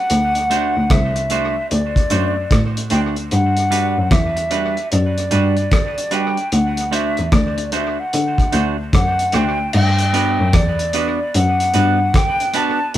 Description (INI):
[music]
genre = roots reggae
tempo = 75 BPM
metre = 4/4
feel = swing 64% on 16ths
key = G major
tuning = A4 = 440 Hz
[part]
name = hollow concert flute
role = melody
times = 0.0-13.0 s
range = D5 to A5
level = -20 LUFS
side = equal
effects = none
[part]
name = muted cello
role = bass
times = 0.1-13.0 s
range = C2 to D3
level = -19 LUFS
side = left 1 dB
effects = none
[part]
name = cloth-damped thuddy drum kit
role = drums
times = 0.1-13.0 s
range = crash cymbal, hi-hat, kick drum, rim click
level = -19 LUFS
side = equal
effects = dub echo
[part]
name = semi-hollow electric guitar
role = accompaniment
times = 0.5-12.8 s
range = G3 to C5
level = -23 LUFS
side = right 4 dB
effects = dub echo
[sound]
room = moderate studio reverb, RT60 0.7 s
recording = band playing live in one room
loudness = -15 LUFS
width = side -12 dB against mid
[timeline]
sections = 0.0-9.7 A section; 9.7-13.0 B section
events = none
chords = 0.1 D7; 3.3 Gmaj7; 6.5 D7; 9.7 Gmaj7